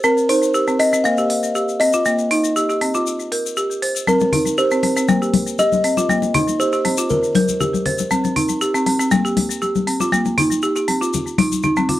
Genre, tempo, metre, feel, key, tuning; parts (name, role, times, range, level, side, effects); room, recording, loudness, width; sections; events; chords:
afro house; 119 BPM; 4/4; straight; C minor; A4 = 443 Hz
buzzing kalimba; melody; 0.0-7.8 s; Bb4 to F5; -20 LUFS; equal; cassette tape, analog delay
folk marimba with hard mallets; arpeggios; 0.0-12.0 s; Bb3 to C5; -19 LUFS; right 1 dB; low-pass filter, cassette tape, analog delay
tube shaker; percussion; 0.0-11.9 s; -28 LUFS; left 7 dB
electronic hi-hat; drums; 0.3-12.0 s; -27 LUFS; right 1 dB; studio reverb, cassette tape
congas; percussion; 4.1-12.0 s; -21 LUFS; left 5 dB
moderate booth ambience, RT60 0.2 s; home recording on cassette; -16 LUFS; side -14 dB against mid
0.0-12.0 A section
0.0 Cm7